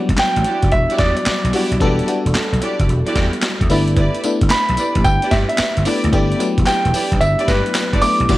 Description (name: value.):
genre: R&B, new jack swing.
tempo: 111 BPM.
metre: 4/4.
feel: swing 67% on 16ths.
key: unclear.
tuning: A4 = 440 Hz.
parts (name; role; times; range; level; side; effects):
FM electric piano; accompaniment; 0.0-8.4 s; F#3 to A4; -22 LUFS; left 2 dB; chorus.
vintage slap bass; bass; 0.1-8.4 s; E1 to G2; -19 LUFS; equal; none.
boom bap sampler-style drum kit; drums; 0.1-8.4 s; crash cymbal, handclaps, hi-hat, kick drum, snare drum, tambourine; -20 LUFS; equal; none.
warm concert grand piano; melody; 0.2-8.4 s; B4 to D6; -18 LUFS; right 1 dB; slapback echo.
warm studio string section; stabs; 0.5-8.4 s; E4 to D5; -24 LUFS; right 2 dB; none.
cowbell; percussion; 4.0-8.4 s; none; -34 LUFS; right 8 dB; none.
room: little or no reverb.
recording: none.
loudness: -14 LUFS.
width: side -16 dB against mid.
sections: 0.0-8.3 A section.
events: none.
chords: 0.0 Em9.